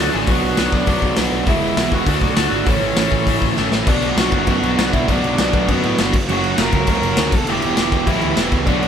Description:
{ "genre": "punk rock", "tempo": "200 BPM", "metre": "4/4", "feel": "straight", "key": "B minor from 3.9 s", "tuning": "A4 = 440 Hz", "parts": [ { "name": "lead guitar through a small cranked amp", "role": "melody", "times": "0.0-8.9 s", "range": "B3 to A#5", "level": "-23 LUFS", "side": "left 1 dB", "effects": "overdrive" }, { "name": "overdriven electric guitar", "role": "riff", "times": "0.0-8.9 s", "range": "E2 to D4", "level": "-23 LUFS", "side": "left 7 dB", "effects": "none" }, { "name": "overdriven electric guitar", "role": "riff", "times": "0.0-8.9 s", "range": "E2 to D4", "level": "-27 LUFS", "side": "left 1 dB", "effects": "none" }, { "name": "overdriven semi-hollow guitar", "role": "riff", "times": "0.0-8.9 s", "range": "A2 to G4", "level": "-22 LUFS", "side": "right 8 dB", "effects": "none" }, { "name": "fuzz picked electric bass", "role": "bass", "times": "0.0-8.9 s", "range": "E1 to A2", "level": "-24 LUFS", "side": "left 1 dB", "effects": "overdrive" }, { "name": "raw garage drum kit", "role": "drums", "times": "0.3-8.9 s", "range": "crash cymbal, hi-hat, kick drum, snare drum", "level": "-19 LUFS", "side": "equal", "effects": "none" } ], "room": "light reverb", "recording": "band playing live in one room", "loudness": "-15 LUFS", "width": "side -8 dB against mid", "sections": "0.0-3.9 A section; 3.9-8.9 B section", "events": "drum fill 3.6-3.9", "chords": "0.3 Bm; 1.5 E; 2.1 D; 2.7 A; 3.9 Bm; 6.1 F#; 7.3 Em", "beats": "| 0.28 0.58 0.88 1.18 | 1.48 1.78 2.08 2.38 | 2.68 2.98 3.28 3.58 | 3.88 4.18 4.48 4.78 | 5.08 5.38 5.68 5.98 | 6.28 6.58 6.88 7.18 | 7.48 7.78 8.08 8.38 | 8.68" }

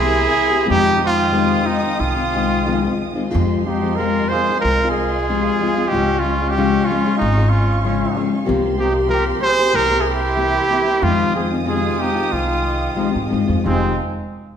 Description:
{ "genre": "mexican folk, mariachi", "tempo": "93 BPM", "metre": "4/4", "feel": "rubato", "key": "F minor", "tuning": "A4 = 437 Hz", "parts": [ { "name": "clear trumpet", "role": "melody", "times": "0.0-14.0 s", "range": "C4 to C5", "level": "-19 LUFS", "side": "right 1 dB", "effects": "none" }, { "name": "mellow trumpet", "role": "second line", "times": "0.0-14.0 s", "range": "Ab3 to Ab4", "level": "-26 LUFS", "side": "right 4 dB", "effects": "none" }, { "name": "nylon-string guitar", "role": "accompaniment", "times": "0.0-13.9 s", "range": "F2 to G4", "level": "-20 LUFS", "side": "left 5 dB", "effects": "none" }, { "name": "warm symphonic violin section", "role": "sustained chords", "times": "0.0-14.0 s", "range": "Ab3 to Eb6", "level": "-28 LUFS", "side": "right 2 dB", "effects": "none" }, { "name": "upright bass", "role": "bass", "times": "0.0-14.0 s", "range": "F1 to Ab2", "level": "-22 LUFS", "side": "right 1 dB", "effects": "none" } ], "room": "wet recital hall reverb, RT60 1.5 s", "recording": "recorded in a church or concert hall", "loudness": "-15 LUFS", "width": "side -8 dB against mid", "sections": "0.0-3.3 A section; 3.3-13.7 B section", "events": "none", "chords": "0.0 C7; 0.7 Fm7; 3.3 Fm; 5.9 Db; 8.5 C7sus4; 9.8 C7; 11.0 Fm7", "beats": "0.07 | 0.71 1.35 2.00 2.67 | 3.34 3.99 4.64 5.29 | 5.93 6.57 7.21 7.85 | 8.48 9.12 9.76 10.39 | 11.04 11.69 12.34 13.00 | 13.66" }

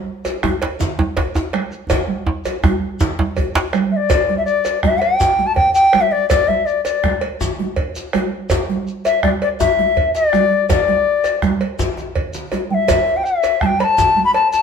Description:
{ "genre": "west african traditional, West African drum ensemble", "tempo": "109 BPM (dotted quarters)", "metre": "12/8", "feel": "straight", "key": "unclear", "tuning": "A4 = 440 Hz", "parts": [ { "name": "cowbell", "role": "percussion", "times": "0.2-14.5 s", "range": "none", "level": "-24 LUFS", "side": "right 5 dB", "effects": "none" }, { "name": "bombo", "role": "percussion", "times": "0.3-13.8 s", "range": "none", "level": "-23 LUFS", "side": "right 2 dB", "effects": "none" }, { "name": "djembe", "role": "percussion", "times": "0.3-14.6 s", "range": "none", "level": "-25 LUFS", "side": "left 4 dB", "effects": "none" }, { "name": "shekere", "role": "percussion", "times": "0.3-14.6 s", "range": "none", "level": "-28 LUFS", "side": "right 2 dB", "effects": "none" }, { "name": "congas", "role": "percussion", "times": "0.4-14.3 s", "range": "none", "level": "-23 LUFS", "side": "right 6 dB", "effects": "none" }, { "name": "djembe", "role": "percussion", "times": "0.4-3.7 s", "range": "none", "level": "-19 LUFS", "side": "right 2 dB", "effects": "none" }, { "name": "bright reedy bansuri", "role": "melody", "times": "3.9-14.6 s", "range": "D5 to B5", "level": "-14 LUFS", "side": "left 3 dB", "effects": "none" } ], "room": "wet stone room reverb, RT60 1.0 s", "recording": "band playing live in one room", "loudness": "-15 LUFS", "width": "side -6 dB against mid", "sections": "0.0-4.1 A section; 4.1-14.6 B section", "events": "drum fill 1.9-4.1, 12.0-12.9", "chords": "none", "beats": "0.25 0.80 1.35 | 1.90 2.45 3.00 3.55 | 4.10 4.65 5.20 5.75 | 6.30 6.85 7.40 7.95 | 8.50 9.05 9.60 10.15 | 10.70 11.24 11.79 12.34 | 12.89 13.44 13.98 14.53" }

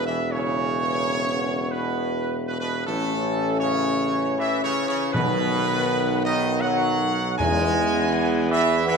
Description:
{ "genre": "classical, ceremonial fanfare", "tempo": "79 BPM", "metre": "3/4", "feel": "straight", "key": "E major", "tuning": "A4 = 440 Hz", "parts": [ { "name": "warm trumpet section", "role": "melody", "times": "0.0-9.0 s", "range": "A4 to G#5", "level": "-25 LUFS", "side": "right 2 dB", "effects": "none" }, { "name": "clear trombone section", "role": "sustained chords", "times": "0.0-9.0 s", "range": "A2 to G#3", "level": "-28 LUFS", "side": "right 3 dB", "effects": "none" }, { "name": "mellow French horn section", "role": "sustained chords", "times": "0.0-9.0 s", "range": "D#3 to C#4", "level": "-27 LUFS", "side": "left 5 dB", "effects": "none" }, { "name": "warm tuba", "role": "bass", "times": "0.0-9.0 s", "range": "E1 to E2", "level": "-27 LUFS", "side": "right 3 dB", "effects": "none" }, { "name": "timpani", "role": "percussion", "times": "5.1-8.5 s", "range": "E2 to B2", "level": "-28 LUFS", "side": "left 1 dB", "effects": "none" } ], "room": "wet scoring stage reverb, RT60 1.9 s", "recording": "minimal, uncompressed stereo recording", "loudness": "-21 LUFS", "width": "side -5 dB against mid", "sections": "0.0-9.0 A section", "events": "none", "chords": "0.0 E5; 2.9 A; 5.1 B; 7.4 E", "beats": "| 0.60 1.36 2.12 | 2.88 3.64 4.39 | 5.15 5.90 6.65 | 7.40 8.15 8.89" }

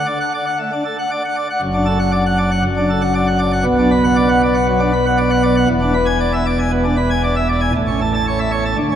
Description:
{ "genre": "classical, organ toccata", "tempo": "117 BPM", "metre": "4/4", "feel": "straight", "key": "unclear", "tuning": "A4 = 440 Hz", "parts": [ { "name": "pipe organ, plenum", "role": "solo", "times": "0.0-9.0 s", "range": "E1 to A5", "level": "-14 LUFS", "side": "equal", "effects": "none" } ], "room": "wet cathedral reverb, RT60 4.4 s", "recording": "minimal, uncompressed stereo recording, vinyl crackle", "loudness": "-14 LUFS", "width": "side -9 dB against mid", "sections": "0.0-9.0 A section", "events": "none", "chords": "0.0 D; 1.6 D/F#; 3.7 Bm; 5.7 E7; 7.7 A", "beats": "0.07 0.58 1.10 | 1.61 2.12 2.64 3.15 | 3.67 4.18 4.68 5.19 | 5.70 6.21 6.72 7.24 | 7.74 8.26 8.78" }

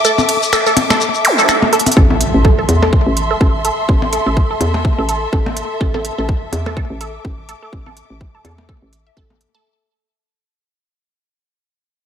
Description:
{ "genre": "minimal techno", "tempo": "125 BPM", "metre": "4/4", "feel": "swing 57% on 16ths", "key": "A minor", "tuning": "A4 = 439 Hz", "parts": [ { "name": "resonant blip pluck", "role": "riff", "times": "0.0-9.6 s", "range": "A4 to E5", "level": "-19 LUFS", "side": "right 2 dB", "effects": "phaser, sidechain pumping, ping-pong delay" }, { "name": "garage drum kit", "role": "drums", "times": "0.0-9.5 s", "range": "finger snaps, hi-hat, ride cymbal, shaker", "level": "-18 LUFS", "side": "equal", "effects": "none" }, { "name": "warm studio string section", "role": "texture", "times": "0.0-9.6 s", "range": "A4 to D6", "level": "-20 LUFS", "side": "equal", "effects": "sidechain pumping" }, { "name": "percussion blips", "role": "percussion", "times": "0.2-9.4 s", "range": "none", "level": "-20 LUFS", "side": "left 3 dB", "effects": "overdrive, ping-pong delay" }, { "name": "zap and impact", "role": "sound effects", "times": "1.2-3.9 s", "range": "none", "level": "-19 LUFS", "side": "equal", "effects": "none" }, { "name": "hollow knocking FM bass", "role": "bass", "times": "2.0-9.5 s", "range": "A1 to E2", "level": "-18 LUFS", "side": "equal", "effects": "sidechain pumping" }, { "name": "electronic kick drum", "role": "drums", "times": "2.0-9.3 s", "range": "none", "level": "-14 LUFS", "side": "equal", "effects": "none" } ], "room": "moderate plate reverb, RT60 1.3 s", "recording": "dreamy mix soaked in reverb", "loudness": "-12 LUFS", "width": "side -8 dB against mid", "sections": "0.0-2.0 A section; 2.0-9.6 B section", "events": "drop 0.0-2.0; break 0.0-2.0; drum fill 1.7; fade-out 2.0-9.6; impact 2.0-3.9", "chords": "0.0 A5; 2.0 Am", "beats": "| 0.05 0.53 1.01 1.49 | 1.97 2.45 2.93 3.41 | 3.89 4.37 4.85 5.33 | 5.81 6.29 6.77 7.25 | 7.73 8.21 8.69 9.17" }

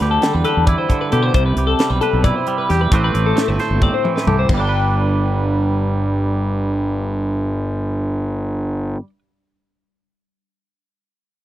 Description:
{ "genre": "math rock and midwest emo", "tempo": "267 BPM (eighths)", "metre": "7/8", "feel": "straight", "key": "G major", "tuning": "A4 = 439 Hz", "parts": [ { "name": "twangy electric guitar", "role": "accompaniment", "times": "0.0-9.2 s", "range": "G2 to C5", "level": "-22 LUFS", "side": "right 5 dB", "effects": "none" }, { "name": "twelve-string electric guitar", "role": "arpeggios", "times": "0.0-9.1 s", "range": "G4 to G5", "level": "-21 LUFS", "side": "left 9 dB", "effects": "phaser" }, { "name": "fuzz fingered electric bass", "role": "bass", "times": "0.0-8.9 s", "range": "G1 to B2", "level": "-18 LUFS", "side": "equal", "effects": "overdrive" }, { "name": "crisp fusion drum kit", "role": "drums", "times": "0.0-4.6 s", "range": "crash cymbal, hi-hat, kick drum, snare drum, toms", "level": "-19 LUFS", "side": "equal", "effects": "none" } ], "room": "small room ambience", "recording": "dry, close 1970s-style studio recording", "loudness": "-15 LUFS", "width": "side -13 dB against mid", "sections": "0.0-4.5 A section; 4.5-7.6 B section", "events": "drum fill 3.8-4.5", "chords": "0.0 G6/D; 1.3 Cmaj7; 2.9 Am9; 4.5 G", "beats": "0.00 0.22 0.45 0.67 0.90 1.12 | 1.34 1.57 1.79 2.02 2.24 2.47 2.69 | 2.92 3.14 3.37 3.59 3.82 4.04 4.27 | 4.49 4.72 4.94 5.17 5.39 5.62 5.84 | 6.07 6.29 6.52 6.74 6.97 7.19 7.42" }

